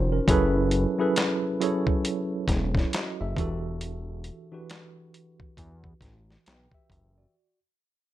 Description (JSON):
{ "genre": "R&B, neo-soul", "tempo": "68 BPM", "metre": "4/4", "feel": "swing 60% on 16ths", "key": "unclear", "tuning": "A4 = 441 Hz", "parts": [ { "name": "mellow tine electric piano", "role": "accompaniment", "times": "0.0-7.6 s", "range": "E3 to G5", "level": "-27 LUFS", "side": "right 1 dB", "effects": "medium stereo tremolo" }, { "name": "fat analog bass", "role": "bass", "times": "0.0-7.3 s", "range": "Fb1 to E2", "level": "-28 LUFS", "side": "equal", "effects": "none" }, { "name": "dusty soul sampler-style drum kit", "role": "drums", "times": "0.3-7.2 s", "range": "handclaps, hi-hat, kick drum, snare drum", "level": "-26 LUFS", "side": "equal", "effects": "none" } ], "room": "light reverb", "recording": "none", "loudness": "-23 LUFS", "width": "side -14 dB against mid", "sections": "0.0-7.3 A section", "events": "fade-out 0.0-7.3", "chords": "0.3 Gbm11; 3.4 Em11" }